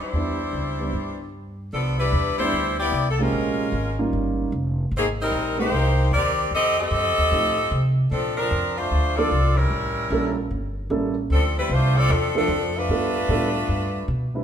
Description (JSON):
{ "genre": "jazz, big band swing", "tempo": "150 BPM", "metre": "4/4", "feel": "swing 64% on 8ths", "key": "C major", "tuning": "A4 = 441 Hz", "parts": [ { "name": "clear saxophone section", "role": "melody", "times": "0.0-14.1 s", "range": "Eb3 to Eb5", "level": "-23 LUFS", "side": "left 1 dB", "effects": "none" }, { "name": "warm concert grand piano", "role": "accompaniment", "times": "0.1-14.4 s", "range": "F3 to C5", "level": "-27 LUFS", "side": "right 3 dB", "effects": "none" }, { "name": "upright bass", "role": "bass", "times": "0.1-14.4 s", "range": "F1 to C3", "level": "-24 LUFS", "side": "equal", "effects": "none" } ], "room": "wet large studio reverb, RT60 1.4 s", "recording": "minimal, uncompressed stereo recording", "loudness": "-20 LUFS", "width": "side -8 dB against mid", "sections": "0.0-1.7 A section; 1.7-14.4 B section", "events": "none", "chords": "0.0 Cmaj9; 3.3 Bbm9; 4.1 Eb9; 4.9 Abmaj9; 6.5 F9; 8.1 Bbmaj9; 9.7 A7b9; 11.3 Dm7; 12.9 G9" }